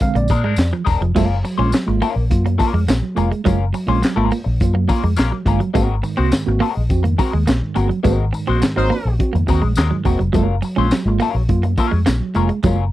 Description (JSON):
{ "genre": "funk", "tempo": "104 BPM", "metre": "4/4", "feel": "straight", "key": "unclear", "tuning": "A4 = 440 Hz", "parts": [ { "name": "electric guitar at the edge of break-up", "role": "accompaniment", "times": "0.0-12.8 s", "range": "Gb3 to C5", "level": "-23 LUFS", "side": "left 9 dB", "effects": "wah" }, { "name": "tine electric piano", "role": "stabs", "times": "0.0-12.8 s", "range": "Ab2 to F5", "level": "-22 LUFS", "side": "right 4 dB", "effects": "overdrive, fast stereo tremolo" }, { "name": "crunchy breakbeat drum kit", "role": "drums", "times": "0.0-12.8 s", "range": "crash cymbal, handclaps, hi-hat, kick drum, snare drum", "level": "-19 LUFS", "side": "equal", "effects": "none" }, { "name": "semi-hollow electric guitar", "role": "riff", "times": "0.2-12.7 s", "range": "F3 to Db4", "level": "-23 LUFS", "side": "right 5 dB", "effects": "tremolo" }, { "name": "vintage muted fingered electric bass", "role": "bass", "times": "0.2-12.9 s", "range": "E1 to Bb2", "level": "-18 LUFS", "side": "equal", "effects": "none" }, { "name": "tambourine", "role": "percussion", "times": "0.3-12.8 s", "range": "none", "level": "-38 LUFS", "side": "left 3 dB", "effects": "none" }, { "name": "warm horn section", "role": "second line", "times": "8.8-9.1 s", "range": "Gb3 to C5", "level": "-22 LUFS", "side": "equal", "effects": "none" } ], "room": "little or no reverb", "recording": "dry, close 1970s-style studio recording", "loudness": "-15 LUFS", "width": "side -15 dB against mid", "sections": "0.0-1.2 A section; 1.2-12.9 B section", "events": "tine electric piano solo 0.0-1.2; band accent 8.0-10.3", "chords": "0.0 Bb9; 1.2 Gbmaj7; 5.8 Ab9; 10.3 Gbmaj7", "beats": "0.01 0.58 | 1.16 1.73 2.31 2.88 | 3.45 4.03 4.60 5.18 | 5.75 6.32 6.90 7.47 | 8.05 8.62 9.20 9.77 | 10.35 10.92 11.49 12.07 | 12.64" }